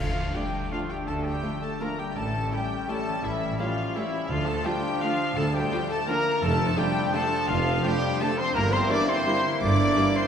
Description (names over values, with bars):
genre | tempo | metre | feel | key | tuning
classical | 169 BPM | 3/4 | uneven beats, rubato | D minor | A4 = 439 Hz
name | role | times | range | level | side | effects
warm chamber violin section | melody | 0.0-10.3 s | E5 to D6 | -33 LUFS | left 5 dB | none
clear clarinet | second line | 0.0-10.3 s | C#4 to E4 | -36 LUFS | left 3 dB | none
mellow cor anglais | second line | 0.0-10.3 s | E4 to D5 | -34 LUFS | right 2 dB | none
mellow silver concert flute | second line | 0.0-10.3 s | E5 to D6 | -33 LUFS | left 1 dB | none
warm bassoon | accompaniment | 0.0-10.3 s | F3 to Bb3 | -36 LUFS | right 1 dB | none
mellow French horn section | sustained chords | 0.0-10.3 s | E3 to D4 | -33 LUFS | left 1 dB | none
concert harp | arpeggios | 0.0-10.3 s | F2 to F6 | -35 LUFS | left 4 dB | none
mellow trumpet section | stabs | 0.0-10.3 s | E4 to D5 | -33 LUFS | equal | none
dark tuba | bass | 0.0-9.9 s | F1 to D2 | -36 LUFS | right 2 dB | none
warm studio cello section | bass | 0.0-9.9 s | D2 to D3 | -33 LUFS | right 2 dB | none
warm symphonic double bass section | bass | 0.0-9.9 s | F1 to D2 | -32 LUFS | right 3 dB | none
dark studio viola section | accompaniment | 0.3-10.0 s | D3 to A3 | -37 LUFS | equal | none
clear trombone section | sustained chords | 0.3-10.1 s | E3 to D4 | -38 LUFS | right 3 dB | none
warm symphonic violin section | second line | 0.4-10.1 s | Bb3 to F4 | -39 LUFS | left 1 dB | none
timpani | percussion | 4.3-4.8 s | D3 | -43 LUFS | right 1 dB | none
room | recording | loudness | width
wet scoring stage reverb, RT60 2.0 s | heard from further back in the room | -23 LUFS | side -8 dB against mid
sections
0.0-10.3 A section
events
none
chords
0.0 Dm; 2.2 A7; 4.3 Dm; 6.4 Dm/F; 8.6 Em7b5/G